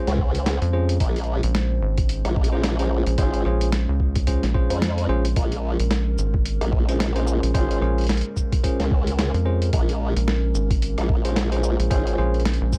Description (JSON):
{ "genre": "glitch hop", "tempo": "110 BPM", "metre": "4/4", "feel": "swing 58% on 16ths", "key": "Bb minor", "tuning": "A4 = 438 Hz", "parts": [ { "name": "dark analog pad", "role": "sustained chords", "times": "0.0-12.8 s", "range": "Ab3 to C5", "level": "-33 LUFS", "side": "equal", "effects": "subtle chorus, sidechain pumping" }, { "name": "bell-like tine electric piano", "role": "stabs", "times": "0.0-12.4 s", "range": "Db4 to C5", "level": "-31 LUFS", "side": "equal", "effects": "sidechain pumping, dub echo" }, { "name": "formant-sweep wobble bass", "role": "bass", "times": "0.1-12.2 s", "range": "Ab1 to F2", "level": "-25 LUFS", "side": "equal", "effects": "chorus" }, { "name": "boom bap sampler-style drum kit", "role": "drums", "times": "0.1-12.8 s", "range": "hi-hat, rim click, shaker, snare drum", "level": "-31 LUFS", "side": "equal", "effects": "none" }, { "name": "electronic kick drum", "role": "drums", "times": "0.2-12.8 s", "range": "none", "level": "-25 LUFS", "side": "equal", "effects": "none" }, { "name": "rubbery square bass", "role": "bass", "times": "0.6-12.8 s", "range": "Ab1 to F2", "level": "-24 LUFS", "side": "equal", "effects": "tube saturation" } ], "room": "digital ambience", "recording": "none", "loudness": "-22 LUFS", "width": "mono", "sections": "0.0-12.8 A section", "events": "none", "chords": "0.0 Bbm7" }